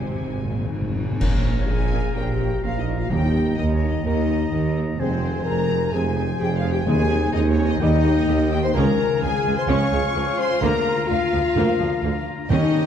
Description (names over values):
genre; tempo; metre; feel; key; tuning
cinematic, heroic adventure film score; 128 BPM; 4/4; straight; unclear; A4 = 440 Hz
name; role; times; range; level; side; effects
rich symphonic violin section; melody; 0.0-12.9 s; C5 to Db6; -36 LUFS; left 6 dB; none
warm symphonic violin section; second line; 0.0-12.9 s; Eb4 to Db6; -35 LUFS; equal; none
dark studio viola section; accompaniment; 0.0-12.9 s; D3 to C5; -31 LUFS; right 2 dB; none
concert harp; arpeggios; 0.0-12.9 s; Ab2 to Bb5; -31 LUFS; left 9 dB; none
dark studio double bass section; bass; 0.0-12.6 s; F1 to Eb2; -26 LUFS; right 4 dB; none
warm studio cello section; bass; 0.0-12.6 s; Db2 to C3; -27 LUFS; right 3 dB; none
warm tuba; bass; 0.0-12.6 s; F1 to Eb2; -28 LUFS; right 4 dB; none
timpani; percussion; 0.0-3.8, 6.9-8.5, 12.5-12.9 s; Ab2 to Eb3; -28 LUFS; left 1 dB; none
clear oboe; second line; 1.2-12.9 s; G5 to Bb5; -33 LUFS; equal; none
flute section; second line; 1.2-12.9 s; C5 to Db6; -34 LUFS; left 1 dB; none
mellow clarinet; second line; 1.2-12.9 s; C5 to F5; -35 LUFS; left 2 dB; none
warm French horn section; sustained chords; 1.2-12.9 s; C4 to Db5; -25 LUFS; left 5 dB; none
warm trombone section; sustained chords; 1.2-12.7 s; C3 to Db4; -34 LUFS; right 3 dB; none
clash cymbals and concert bass drum; percussion; 1.2-2.1 s; none; -26 LUFS; equal; none
room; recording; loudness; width
wet recital hall reverb, RT60 1.5 s; dark, warm production; -19 LUFS; side -8 dB against mid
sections
0.0-1.2 A section; 1.2-12.9 B section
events
timpani fill 0.0-1.2; band accent 1.2-1.7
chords
0.0 Ab; 1.2 Bbm; 3.1 Eb; 5.0 Fm; 6.9 Ab/Eb; 7.8 Eb; 8.8 Db; 10.6 Bb/D